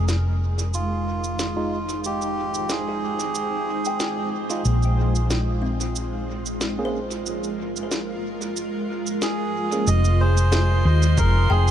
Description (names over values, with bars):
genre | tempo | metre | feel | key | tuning
ambient dub | 92 BPM | 4/4 | swing 54% on 16ths | F minor | A4 = 440 Hz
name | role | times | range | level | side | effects
granular cloud pad | sustained chords | 0.0-11.7 s | Ab3 to F5 | -28 LUFS | equal | built-in reverb
hollow-body short-scale fingered electric bass | bass | 0.0-11.7 s | F1 to Eb2 | -21 LUFS | equal | none
electronic snare drum and cabasa | drums | 0.1-11.7 s | none | -31 LUFS | right 1 dB | studio ambience, dub echo
melodica | melody | 0.7-4.3, 9.2-11.7 s | F4 to Eb5 | -28 LUFS | right 2 dB | tape echo
tine electric piano | stabs | 1.6-9.8 s | Ab3 to Ab4 | -34 LUFS | right 3 dB | vintage 12-bit sampler grit, dub echo
kalimba | arpeggios | 2.9-11.7 s | C4 to G5 | -34 LUFS | left 4 dB | low-pass filter, tape echo
drifting glass-harmonics texture | texture | 10.0-11.7 s | C6 | -32 LUFS | right 6 dB | chorus, built-in reverb
electronic kick drum | drums | 11.2-11.3 s | none | -24 LUFS | equal | overdrive, studio ambience
room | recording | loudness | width
light reverb | none | -20 LUFS | side -10 dB against mid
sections
0.0-9.9 A section; 9.9-11.7 B section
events
filter sweep on ambient pad 0.0-9.9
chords
0.0 Fm7; 4.7 Bb7(no3); 9.9 Fm7